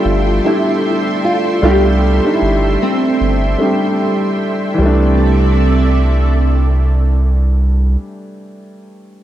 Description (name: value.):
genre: hip hop.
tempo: 76 BPM.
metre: 4/4.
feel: swing 57% on 16ths.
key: C major.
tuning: A4 = 440 Hz.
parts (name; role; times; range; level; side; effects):
nylon-string guitar; melody; 0.0-4.0 s; C4 to G4; -18 LUFS; right 1 dB; ensemble chorus, analog delay.
dark upright piano; accompaniment; 0.0-9.2 s; E3 to E5; -17 LUFS; equal; cassette tape.
string machine, cellos; sustained chords; 0.0-8.0 s; C3 to C6; -20 LUFS; right 2 dB; ensemble chorus.
soft dub sub bass; bass; 0.1-8.0 s; G1 to C2; -13 LUFS; equal; none.
room: moderate lush hall reverb, RT60 2.5 s.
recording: dreamy mix soaked in reverb.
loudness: -11 LUFS.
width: side -12 dB against mid.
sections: 0.0-4.8 A section; 4.8-7.9 B section.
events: none.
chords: 0.0 C6.